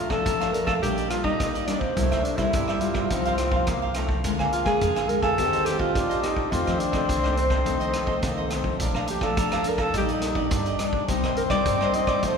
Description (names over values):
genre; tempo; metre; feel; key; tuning
samba and choro; 105 BPM; 4/4; straight; Bb major; A4 = 441 Hz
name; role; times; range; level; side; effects
breathy alto saxophone; melody; 0.0-12.4 s; C4 to Eb5; -27 LUFS; right 1 dB; none
clear trombone; second line; 0.0-12.4 s; G3 to Eb4; -29 LUFS; left 4 dB; none
nylon-string guitar; accompaniment; 0.0-12.4 s; F2 to A4; -30 LUFS; left 2 dB; none
upright bass; bass; 0.0-12.4 s; Bb1 to F3; -31 LUFS; equal; none
cavaquinho; accompaniment; 0.1-12.4 s; D4 to Bb5; -31 LUFS; right 3 dB; none
vintage drum kit; drums; 0.1-12.4 s; hi-hat, kick drum, rim click; -30 LUFS; equal; none
room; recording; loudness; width
wet church reverb, RT60 2.8 s; recorded in a church or concert hall; -22 LUFS; side -6 dB against mid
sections
0.0-12.4 A section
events
none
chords
0.0 Bbmaj7; 0.8 Ebmaj7/Bb; 2.0 C7; 3.1 F7sus4/C; 4.2 Bb7/D; 5.4 Eb6; 6.5 F7; 8.8 Bbmaj7; 9.9 Ebmaj7/Bb; 11.1 Cm7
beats
0.26 0.83 1.40 | 1.97 2.54 3.11 3.68 | 4.25 4.82 5.39 5.96 | 6.53 7.10 7.67 8.24 | 8.81 9.38 9.95 10.52 | 11.09 11.66 12.23